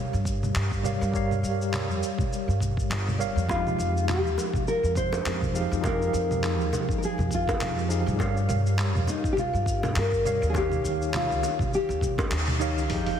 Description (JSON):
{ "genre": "sunset chillout", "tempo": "102 BPM", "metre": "4/4", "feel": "swing 57% on 16ths", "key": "unclear", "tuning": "A4 = 439 Hz", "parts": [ { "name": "tine electric piano", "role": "accompaniment", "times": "0.0-13.2 s", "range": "Eb3 to F5", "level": "-30 LUFS", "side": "right 1 dB", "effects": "medium stereo tremolo, auto-pan, low-pass filter, tape echo" }, { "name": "upright bass", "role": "bass", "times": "0.1-13.2 s", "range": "G1 to G2", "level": "-28 LUFS", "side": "equal", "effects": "none" }, { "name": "dusty soul sampler-style drum kit", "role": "drums", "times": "0.1-13.2 s", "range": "cabasa, congas, handclaps, hi-hat", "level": "-32 LUFS", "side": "right 1 dB", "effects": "none" }, { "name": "electronic kick drum", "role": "drums", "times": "0.3-12.3 s", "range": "none", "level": "-31 LUFS", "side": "equal", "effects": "none" }, { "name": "nylon-string guitar", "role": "melody", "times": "3.5-12.6 s", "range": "Eb4 to C5", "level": "-29 LUFS", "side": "left 2 dB", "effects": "tape echo" }, { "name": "bongos", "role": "percussion", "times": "3.5-12.3 s", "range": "none", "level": "-36 LUFS", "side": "right 2 dB", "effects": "none" }, { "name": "impact", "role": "sound effects", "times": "12.9-13.2 s", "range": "none", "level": "-32 LUFS", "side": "equal", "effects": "none" }, { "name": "drifting glass-harmonics texture", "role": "texture", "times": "12.9-13.2 s", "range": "G6", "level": "-41 LUFS", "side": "right 4 dB", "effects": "chorus, built-in reverb" } ], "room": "moderate lush hall reverb, RT60 3.0 s", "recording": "heavily compressed radio sound, multiband compression", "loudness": "-24 LUFS", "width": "side -9 dB against mid", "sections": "0.0-12.9 A section", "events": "band accent 12.3; impact 12.9", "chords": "0.0 Gm7b5; 3.5 Fm9; 8.2 Gm7b5; 10.6 Eb9", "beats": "0.55 | 1.14 1.73 2.31 2.90 | 3.49 4.08 4.67 5.26 | 5.84 6.43 7.02 7.61 | 8.20 8.79 9.37 9.96 | 10.55 11.14 11.73 12.31 | 12.90" }